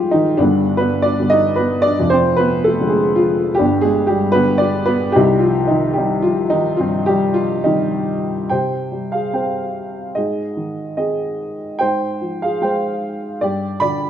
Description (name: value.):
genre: classical, lyrical solo piano.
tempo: 75 BPM.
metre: 4/4.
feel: rubato.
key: C harmonic minor.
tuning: A4 = 439 Hz.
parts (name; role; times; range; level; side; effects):
dark upright piano; solo; 0.0-14.1 s; F1 to B5; -15 LUFS; equal; none.
room: moderate recital hall reverb, RT60 1.4 s.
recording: minimal, uncompressed stereo recording.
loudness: -15 LUFS.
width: side -10 dB against mid.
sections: 0.0-8.5 A section; 8.5-14.1 B section.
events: none.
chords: 0.4 G; 2.0 Ddim/F; 3.6 G; 5.2 Cm; 8.5 C5; 10.2 Ab; 11.8 Fmadd9/Ab; 13.4 G.